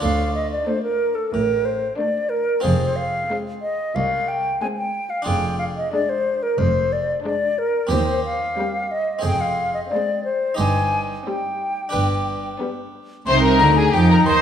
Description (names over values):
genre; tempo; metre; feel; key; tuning
classical, baroque-style concerto movement with solo episodes; 91 BPM; 4/4; straight; C minor; A4 = 442 Hz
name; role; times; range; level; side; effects
hollow concert flute; melody; 0.0-14.4 s; A4 to C6; -22 LUFS; left 1 dB; none
harpsichord; accompaniment; 0.0-14.4 s; C2 to C5; -29 LUFS; right 1 dB; none
warm chamber cello section; bass; 0.0-14.4 s; C2 to F3; -24 LUFS; right 1 dB; none
warm studio double bass section; bass; 0.0-14.4 s; F1 to F2; -23 LUFS; right 2 dB; none
rich chamber violin section; melody; 0.7-14.4 s; D4 to C6; -27 LUFS; left 6 dB; none
warm studio violin section; second line; 0.7-14.4 s; B3 to C5; -24 LUFS; left 3 dB; none
dark chamber viola section; accompaniment; 0.7-14.4 s; G3 to Eb4; -27 LUFS; left 1 dB; none
room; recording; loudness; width
moderate recital hall reverb, RT60 1.5 s; studio ambience; -18 LUFS; side -9 dB against mid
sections
0.0-13.3 A section; 13.3-14.4 B section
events
none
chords
0.0 Dm; 2.6 Fm; 5.3 Ddim/F; 7.9 Cm/Eb; 9.2 Fm; 10.6 Cm/G; 11.9 G; 13.3 Cm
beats
| 0.03 0.68 1.33 1.98 | 2.64 3.31 3.96 4.62 | 5.27 5.93 6.59 7.25 | 7.91 8.58 9.24 9.90 | 10.59 11.26 11.93 12.60 | 13.27 13.93